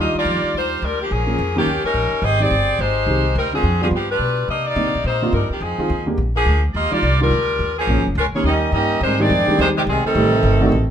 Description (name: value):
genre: jazz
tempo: 212 BPM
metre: 4/4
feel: swing 61% on 8ths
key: Eb major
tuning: A4 = 442 Hz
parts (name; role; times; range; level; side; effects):
- bright saxophone section; melody; 0.0-10.9 s; Eb3 to Eb5; -19 LUFS; equal; none
- warm upright piano; accompaniment; 0.0-10.7 s; D3 to Ab4; -22 LUFS; right 1 dB; none
- upright bass; bass; 0.0-10.9 s; F1 to D3; -21 LUFS; equal; none
- bright trombone section; second line; 8.5-10.9 s; C3 to Eb4; -22 LUFS; right 2 dB; none
room: moderate large studio reverb, RT60 0.9 s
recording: minimal, uncompressed stereo recording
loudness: -16 LUFS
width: side -9 dB against mid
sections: 0.0-9.0 A section; 9.0-10.9 B section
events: none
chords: 0.0 Ebmaj9; 1.1 Bbm7; 1.7 Eb7; 2.2 Abmaj7; 3.4 Dm7b5; 3.9 G7; 4.5 Cm9; 5.6 Fm7; 6.2 Bb7; 6.7 Ebmaj9; 7.9 Bbm7; 8.4 Eb7; 9.0 Abmaj7; 10.1 Am7b5